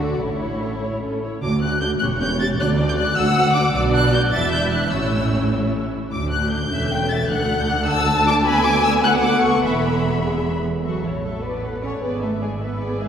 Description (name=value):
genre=quick classical-period movement for string orchestra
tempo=102 BPM (dotted quarters)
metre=6/8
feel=straight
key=D major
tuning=A4 = 441 Hz
part: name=dark chamber violin section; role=melody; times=0.0-13.1 s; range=C#5 to A6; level=-24 LUFS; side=left 2 dB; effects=none
part: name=rich chamber violin section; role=second line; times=0.0-13.1 s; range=E4 to A5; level=-24 LUFS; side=left 2 dB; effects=none
part: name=warm chamber viola section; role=accompaniment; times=0.0-13.1 s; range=B3 to E5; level=-25 LUFS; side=right 1 dB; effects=none
part: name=warm chamber cello section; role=bass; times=0.0-13.1 s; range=D2 to C#4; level=-25 LUFS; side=right 1 dB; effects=none
part: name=warm chamber double bass section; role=bass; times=0.0-13.1 s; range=E1 to D2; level=-25 LUFS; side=right 2 dB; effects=none
room=wet church reverb, RT60 3.4 s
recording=none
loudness=-18 LUFS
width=side -8 dB against mid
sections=0.0-1.4 A section; 1.4-10.8 B section; 10.8-13.1 C section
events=none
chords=0.2 A; 1.4 D; 2.0 Em6; 2.6 D; 3.8 Bm; 4.3 Em11; 4.9 A; 6.1 D; 6.7 A7/E; 7.3 D; 8.5 Bm7/D; 9.6 Esus4; 10.2 E; 10.8 A; 11.4 Bm7/A; 12.0 E7/G#